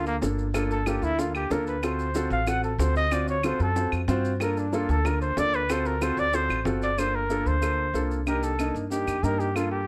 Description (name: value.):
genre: Afro-Cuban jazz.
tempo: 186 BPM.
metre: 4/4.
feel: straight.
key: G minor.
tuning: A4 = 439 Hz.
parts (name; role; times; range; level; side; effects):
breathy trumpet; melody; 0.0-9.9 s; Bb3 to F#5; -30 LUFS; equal; plate reverb.
warm upright piano; accompaniment; 0.0-9.8 s; Bb3 to C5; -31 LUFS; equal; none.
upright bass; bass; 0.0-9.9 s; G1 to G2; -31 LUFS; equal; none.
maracas; percussion; 0.1-9.7 s; none; -48 LUFS; equal; none.
bongos; percussion; 0.2-6.8 s; none; -38 LUFS; equal; none.
claves; percussion; 0.5-9.7 s; none; -39 LUFS; equal; none.
room: moderate club reverb, RT60 0.5 s.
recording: none.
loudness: -26 LUFS.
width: mono.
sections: 0.0-7.0 A section; 7.0-9.9 B section.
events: trumpet solo 0.0-7.0.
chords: 0.0 Gm7; 1.8 D7#9; 4.4 Gm7; 5.7 D7#9; 7.0 Gm7; 8.3 Cm7.